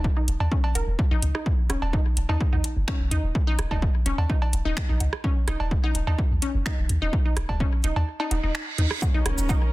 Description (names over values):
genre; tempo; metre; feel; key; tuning
minimal techno; 127 BPM; 4/4; straight; Eb minor; A4 = 442 Hz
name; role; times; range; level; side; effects
punchy sub bass; bass; 0.0-9.5 s; Eb1 to Eb2; -25 LUFS; equal; sidechain pumping
electronic kick drum; drums; 0.0-9.6 s; none; -24 LUFS; equal; overdrive
resonant blip pluck; riff; 0.2-9.6 s; Db4 to Bb4; -32 LUFS; left 1 dB; chorus, cassette tape, sidechain pumping, tape echo
house drum kit; drums; 0.3-9.6 s; cabasa, finger snaps, hi-hat; -32 LUFS; equal; overdrive, soft clipping on snare
electronic cowbell, woodblock and rim click; percussion; 0.4-9.6 s; none; -34 LUFS; right 3 dB; soft clipping on snare, ping-pong delay
reverse cymbal and impact; sound effects; 8.3-9.7 s; none; -34 LUFS; right 3 dB; none
muted studio string section; texture; 9.0-9.7 s; Db4 to Bb4; -33 LUFS; equal; sidechain pumping
room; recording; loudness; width
little or no reverb; dense, heavily limited modern master; -22 LUFS; side -18 dB against mid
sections
0.0-9.0 A section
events
break 8.1-9.0; reverse cymbal 8.3-9.0; impact 9.0-9.7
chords
0.0 N.C.; 9.0 Eb7(no3)